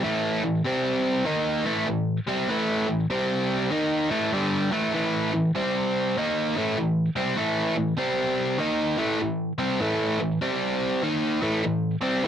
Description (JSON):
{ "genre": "rock", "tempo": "98 BPM", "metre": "4/4", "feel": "swing 64% on 8ths", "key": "unclear", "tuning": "A4 = 435 Hz", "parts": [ { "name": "biting overdriven guitar", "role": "solo", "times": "0.0-12.3 s", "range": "G2 to D#4", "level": "-23 LUFS", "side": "equal", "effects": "none" } ], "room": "light reverb", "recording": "dry, close 1970s-style studio recording", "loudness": "-23 LUFS", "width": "side -9 dB against mid", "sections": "0.0-12.3 A section", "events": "none", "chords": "0.0 A5; 0.7 C5; 1.3 Am; 3.1 C5; 3.7 A5; 5.5 C5; 6.2 Am; 8.0 C5; 8.6 Am; 10.4 C5; 11.0 Am", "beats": "| 0.04 0.65 1.27 1.88 | 2.49 3.10 3.71 4.32 | 4.93 5.54 6.16 6.76 | 7.38 7.99 8.60 9.21 | 9.81 10.43 11.04 11.64 | 12.26" }